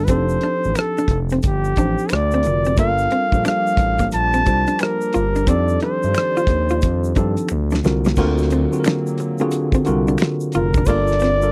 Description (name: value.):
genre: R&B, neo-soul.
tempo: 89 BPM.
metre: 4/4.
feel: swing 63% on 16ths.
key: unclear.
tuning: A4 = 439 Hz.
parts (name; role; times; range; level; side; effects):
mellow flugelhorn; melody; 0.0-11.5 s; G4 to A5; -23 LUFS; equal; slapback echo.
archtop guitar, miked and amplified; second line; 0.0-11.3 s; Bb3 to F4; -26 LUFS; equal; none.
mellow tine electric piano; accompaniment; 0.0-11.5 s; D3 to A5; -25 LUFS; equal; none.
smooth gliding synth bass; bass; 0.0-11.5 s; F1 to G2; -23 LUFS; equal; none.
cloth-damped thuddy drum kit; drums; 0.1-11.4 s; crash cymbal, finger snaps, hi-hat, kick drum, ride cymbal, rim click, snare drum; -22 LUFS; equal; none.
tube shaker and finger snaps; percussion; 0.1-11.5 s; none; -38 LUFS; equal; none.
hollow soft pad; sustained chords; 3.5-10.8 s; D3 to D5; -33 LUFS; equal; none.
room: little or no reverb.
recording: dry, close 1970s-style studio recording.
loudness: -18 LUFS.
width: mono.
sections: 0.0-8.2 A section; 8.2-10.9 B section.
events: drum fill 7.5-8.2.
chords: 0.1 F13; 2.1 D7alt; 2.8 Gm9; 5.5 F13; 7.5 D7alt; 10.9 Gm9.